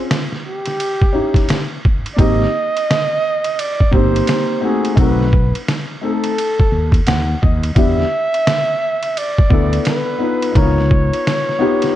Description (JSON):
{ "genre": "hip hop, jazz-hop", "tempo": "86 BPM", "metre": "4/4", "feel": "swing 61% on 16ths", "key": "unclear", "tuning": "A4 = 440 Hz", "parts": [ { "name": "breathy flugelhorn", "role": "melody", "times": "0.0-12.0 s", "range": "G4 to E5", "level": "-20 LUFS", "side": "right 2 dB", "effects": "none" }, { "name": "dark upright piano", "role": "accompaniment", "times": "0.0-12.0 s", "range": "A3 to F#5", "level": "-19 LUFS", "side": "left 2 dB", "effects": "none" }, { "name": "trip hop sampler-style drum kit", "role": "drums", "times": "0.1-11.9 s", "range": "hi-hat, kick drum, ride cymbal, snare drum", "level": "-17 LUFS", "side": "equal", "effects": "none" }, { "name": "mellow fretless electric bass", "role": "bass", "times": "2.2-11.1 s", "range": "G1 to E2", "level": "-17 LUFS", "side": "equal", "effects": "none" } ], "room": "light reverb", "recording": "dark, warm production", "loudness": "-14 LUFS", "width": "side -13 dB against mid", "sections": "0.0-12.0 A section", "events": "break 0.0-2.2; upright piano fill 6.7-7.8", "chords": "0.0 Dbmaj7#11/C; 0.8 C#dim; 2.2 Abmaj7 (rootless); 5.0 B7b9; 7.8 E7(no3); 10.6 Db13", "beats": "0.09 0.79 1.48 | 2.18 2.88 3.58 4.28 | 4.97 5.67 6.37 7.07 | 7.76 8.46 9.16 9.86 | 10.55 11.25 11.95" }